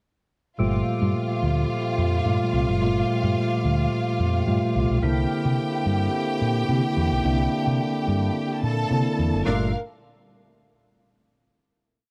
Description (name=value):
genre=disco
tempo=108 BPM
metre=4/4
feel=straight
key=G dorian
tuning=A4 = 440 Hz
part: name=clear studio string section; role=second line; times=0.6-9.7 s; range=D4 to A5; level=-31 LUFS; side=equal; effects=none
part: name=mellow tine electric piano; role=accompaniment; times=0.6-9.7 s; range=Bb2 to F4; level=-28 LUFS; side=equal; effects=none
part: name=percussive tonewheel organ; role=sustained chords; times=0.6-9.7 s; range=Bb2 to G4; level=-32 LUFS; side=equal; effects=overdrive, slow rotary speaker
part: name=hollow-body short-scale fingered electric bass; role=bass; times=0.6-9.7 s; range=F#1 to C3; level=-26 LUFS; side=equal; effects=none
room=little or no reverb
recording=dry, close 1970s-style studio recording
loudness=-23 LUFS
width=mono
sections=0.6-9.5 groove; 9.5-11.7 final chord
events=none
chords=0.6 Gm9; 5.0 C9; 9.5 Gm9